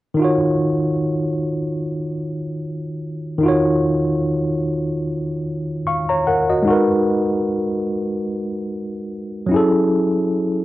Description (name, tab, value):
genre	hip hop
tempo	74 BPM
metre	4/4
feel	swing 55% on 16ths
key	Eb minor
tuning	A4 = 435 Hz
part	tine electric piano	accompaniment	0.1-10.6 s	Eb3 to Db6	-18 LUFS	equal	overdrive, fast stereo tremolo, cassette tape, low-pass filter
room	moderate studio reverb, RT60 0.6 s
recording	dry, gritty hardware recording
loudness	-18 LUFS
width	side -16 dB against mid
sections	0.2-10.6 A section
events	none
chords	0.2 Ebm9; 6.7 Abm9; 9.5 Gbm9